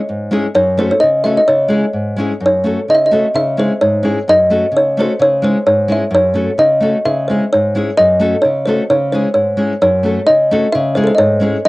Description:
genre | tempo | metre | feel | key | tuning
balkan folk | 129 BPM | 2/4 | swing 54% on 16ths | C# harmonic minor | A4 = 440 Hz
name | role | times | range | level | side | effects
kalimba | melody | 0.0-11.7 s | A4 to E5 | -13 LUFS | equal | cassette tape
nylon-string guitar | accompaniment | 0.1-11.7 s | F#2 to A4 | -16 LUFS | left 1 dB | cassette tape
room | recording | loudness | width
light reverb | home recording on cassette | -11 LUFS | side -21 dB against mid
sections
0.0-2.4 A section; 2.4-9.8 B section; 9.8-11.7 B section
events
none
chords
0.0 C#m; 0.5 F#m; 1.5 C#m; 2.4 F#m; 3.3 C#m; 4.3 F#m; 5.2 C#m; 6.1 F#m; 7.1 C#m; 8.0 F#m; 8.9 C#m; 9.8 F#m; 10.7 C#m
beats
0.07 | 0.54 1.00 | 1.47 1.94 | 2.40 2.87 | 3.33 3.80 | 4.26 4.73 | 5.19 5.66 | 6.12 6.59 | 7.05 7.51 | 7.98 8.44 | 8.90 9.36 | 9.82 10.28 | 10.74 11.20 | 11.66

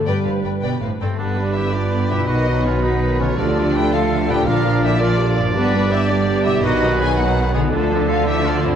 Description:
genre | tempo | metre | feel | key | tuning
cinematic | 110 BPM (dotted quarters) | 6/8 | straight | G mixolydian | A4 = 440 Hz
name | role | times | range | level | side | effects
warm symphonic viola section | accompaniment | 0.0-8.8 s | D3 to B4 | -27 LUFS | right 2 dB | none
dark French horn section | sustained chords | 0.0-8.6 s | G3 to G4 | -26 LUFS | left 2 dB | none
concert harp | arpeggios | 0.0-8.8 s | G2 to B4 | -26 LUFS | left 8 dB | none
warm symphonic violin section | melody | 0.1-8.8 s | Ab4 to Ab5 | -26 LUFS | left 5 dB | none
dark chamber violin section | second line | 0.1-8.8 s | Ab3 to D5 | -29 LUFS | left 2 dB | none
rich symphonic cello section | bass | 0.1-8.8 s | G2 to D3 | -24 LUFS | right 4 dB | none
warm symphonic double bass section | bass | 0.1-8.8 s | G1 to D2 | -23 LUFS | right 3 dB | none
clear oboe | second line | 1.0-8.8 s | B3 to B4 | -28 LUFS | right 1 dB | none
dark clarinet | second line | 1.2-8.8 s | D4 to Bb4 | -27 LUFS | equal | none
bright trombone section | sustained chords | 1.2-8.8 s | D3 to Bb3 | -27 LUFS | right 5 dB | none
bright trumpet | stabs | 1.2-8.8 s | A4 to D5 | -25 LUFS | right 1 dB | none
timpani | percussion | 3.4-3.9 s | D3 | -32 LUFS | right 1 dB | none
room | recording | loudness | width
wet scoring stage reverb, RT60 2.1 s | dark, warm production, nothing above 10.6 kHz | -16 LUFS | side -8 dB against mid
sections
0.0-1.2 A section; 1.2-8.8 A section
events
none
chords
0.1 G; 2.3 B; 3.4 Dm; 4.5 Bb; 5.6 G; 6.6 B; 7.7 Dm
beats
| 0.06 0.62 | 1.19 1.74 | 2.29 2.84 | 3.39 3.94 | 4.48 5.01 | 5.55 6.10 | 6.64 7.18 | 7.73 8.28

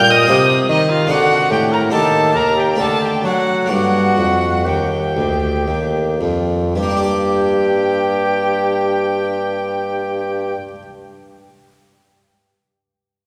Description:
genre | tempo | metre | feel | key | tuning
classical, baroque-style sonata movement with continuo | 55-75 BPM | 3/4 | straight | G minor | A4 = 441 Hz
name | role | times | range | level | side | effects
clear trumpet | melody | 0.0-10.5 s | Eb4 to Eb5 | -24 LUFS | equal | none
warm violin | second line | 0.0-10.6 s | Eb5 to G6 | -22 LUFS | equal | none
harpsichord | accompaniment | 0.0-10.8 s | D2 to D5 | -23 LUFS | equal | none
clear bassoon | bass | 0.0-10.5 s | D2 to F#3 | -21 LUFS | equal | none
room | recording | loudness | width
wet concert hall reverb, RT60 2.3 s | recorded in a church or concert hall | -16 LUFS | mono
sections
0.0-6.8 A section; 6.8-10.0 B section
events
slowing down 0.0-6.8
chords
0.3 Cm; 1.1 D7; 1.9 Eb; 2.8 D; 3.7 Gm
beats
0.30 | 1.10 1.93 2.79 | 3.70 4.66 5.67 | 6.76 7.85 8.95

